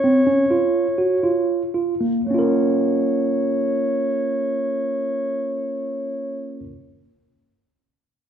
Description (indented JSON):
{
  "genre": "contemporary instrumental, chamber music in an uneven meter",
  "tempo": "115 BPM",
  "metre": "7/4",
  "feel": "straight",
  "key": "Bb minor",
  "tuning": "A4 = 436 Hz",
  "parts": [
    { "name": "dark clarinet", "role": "melody", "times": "0.0-6.6 s", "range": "Db5", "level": "-23 LUFS", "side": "equal", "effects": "none" },
    { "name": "overdriven tine electric piano", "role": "arpeggios", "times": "0.0-6.7 s", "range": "Bb3 to Bb4", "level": "-20 LUFS", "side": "right 1 dB", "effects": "none" }
  ],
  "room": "moderate recital hall reverb, RT60 1.4 s",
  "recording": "recorded in a church or concert hall",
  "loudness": "-19 LUFS",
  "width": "side -8 dB against mid",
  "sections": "0.0-2.3 A section; 2.3-5.9 B section",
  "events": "slowing down 0.0-2.3",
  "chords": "0.0 Bbm (rootless); 2.3 Bbm",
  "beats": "0.26 0.74 1.23 1.74 | 2.26 2.79 3.31 3.83 4.35 4.87 5.40"
}